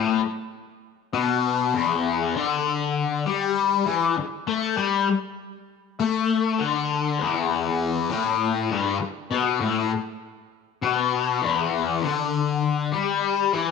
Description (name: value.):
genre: rock.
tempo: 99 BPM.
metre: 4/4.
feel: straight.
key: E minor.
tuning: A4 = 442 Hz.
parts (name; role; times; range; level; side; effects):
fuzz guitar; solo; 0.0-13.7 s; E2 to A3; -22 LUFS; left 7 dB; distortion, phaser, slapback echo.
room: moderate echo chamber reverb, RT60 1.8 s.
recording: none.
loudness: -21 LUFS.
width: side -5 dB against mid.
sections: 0.0-13.7 A section.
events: none.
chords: none.